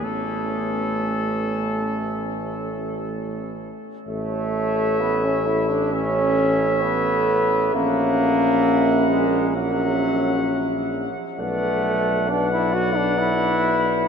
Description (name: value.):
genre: classical, hymn-like piece for brass band.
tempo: 58-68 BPM.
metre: 4/4.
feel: rubato.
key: A major.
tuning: A4 = 436 Hz.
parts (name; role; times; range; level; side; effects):
warm cornet; melody; 0.0-14.0 s; A4 to F#5; -28 LUFS; left 4 dB; none.
mellow flugelhorn; second line; 0.0-14.0 s; C#4 to E5; -29 LUFS; right 6 dB; none.
clear trombone; accompaniment; 0.0-14.1 s; E3 to F#4; -24 LUFS; right 2 dB; none.
mellow euphonium; accompaniment; 0.0-14.0 s; A3 to B4; -25 LUFS; left 2 dB; none.
warm tuba; bass; 0.0-14.0 s; A1 to B1; -27 LUFS; right 1 dB; none.
room: wet huge ambient reverb, RT60 7.4 s.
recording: in a vast, echoing space.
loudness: -19 LUFS.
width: side -6 dB against mid.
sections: 0.0-4.1 A section; 4.1-14.1 A section.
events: none.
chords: 0.0 A; 7.7 F#7/A#; 11.4 Bm7.